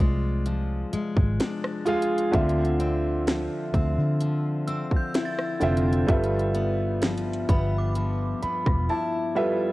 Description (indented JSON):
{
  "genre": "contemporary R&B",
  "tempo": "64 BPM",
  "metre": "4/4",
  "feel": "straight",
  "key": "unclear",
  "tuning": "A4 = 441 Hz",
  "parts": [
    { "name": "warm grand piano", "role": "accompaniment", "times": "0.0-9.7 s", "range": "D3 to B5", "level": "-27 LUFS", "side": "right 1 dB", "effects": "cassette tape" },
    { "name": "picked steel-string acoustic guitar", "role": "arpeggios", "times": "0.0-9.7 s", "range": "G2 to E4", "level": "-30 LUFS", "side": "left 4 dB", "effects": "cassette tape" },
    { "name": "vintage muted fingered electric bass", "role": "bass", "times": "0.0-8.9 s", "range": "E1 to D3", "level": "-26 LUFS", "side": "equal", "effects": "none" },
    { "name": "trap drum kit", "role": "drums", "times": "0.5-8.9 s", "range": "hi-hat, kick drum, rim click, snare drum", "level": "-24 LUFS", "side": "equal", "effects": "cassette tape" },
    { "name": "synth chime", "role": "texture", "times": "4.7-9.3 s", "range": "B5 to A6", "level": "-38 LUFS", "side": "right 1 dB", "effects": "ensemble chorus, cassette tape, tape echo" }
  ],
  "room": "little or no reverb",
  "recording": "home recording on cassette",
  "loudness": "-22 LUFS",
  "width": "side -18 dB against mid",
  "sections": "0.0-9.7 A section",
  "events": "grand piano fill 8.0-9.7; drums muted 8.9-9.7",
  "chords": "0.0 Fm6/C; 2.3 Dm9; 6.1 G13"
}